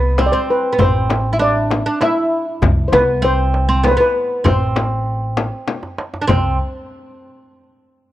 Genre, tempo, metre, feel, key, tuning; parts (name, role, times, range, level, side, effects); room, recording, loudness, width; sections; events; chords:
Persian modal ensemble; 98 BPM; 3/4; straight; C dastgah mahur; A4 = 442 Hz
steel pan; melody; 0.0-6.6 s; G4 to E5; -18 LUFS; left 1 dB
oud; second line; 0.0-6.6 s; B3 to E4; -20 LUFS; right 2 dB
upright bass; bass; 0.0-6.6 s; A1 to C2; -18 LUFS; equal
frame drum; percussion; 0.2-6.6 s; -20 LUFS; left 4 dB
tombak; percussion; 0.2-6.6 s; -21 LUFS; right 1 dB
studio ambience; dry, close 1970s-style studio recording; -14 LUFS; side -14 dB against mid
0.0-6.3 A section; 6.3-8.1 B section
drum fill 5.7-6.3